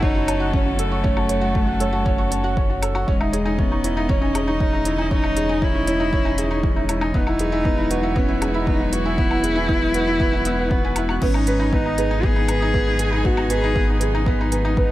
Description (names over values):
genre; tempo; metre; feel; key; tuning
piano and strings electronica; 118 BPM; 4/4; straight; C# minor; A4 = 440 Hz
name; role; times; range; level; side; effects
dark cello; melody; 0.0-14.9 s; G#3 to G#4; -24 LUFS; equal; none
rich string quartet; sustained chords; 0.0-14.9 s; B2 to D#5; -30 LUFS; equal; sidechain pumping
soft round pluck; arpeggios; 0.0-14.8 s; B4 to F#6; -31 LUFS; right 4 dB; lush chorus, sidechain pumping, tape echo
felt-muted upright piano; riff; 0.0-14.9 s; B3 to C#5; -24 LUFS; equal; tape echo
warm sub bass; bass; 0.0-14.9 s; E1 to G#1; -25 LUFS; equal; sidechain pumping
electronic kick drum; drums; 0.0-14.9 s; none; -22 LUFS; equal; none
deep house drum kit; drums; 0.3-14.6 s; crash cymbal, hi-hat, woodblock; -29 LUFS; left 2 dB; none
room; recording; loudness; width
light reverb, digital ambience; none; -18 LUFS; side -15 dB against mid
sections
0.0-14.9 A section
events
none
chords
0.0 F#m; 3.1 C#madd9/E; 7.1 Eadd9; 11.2 G#m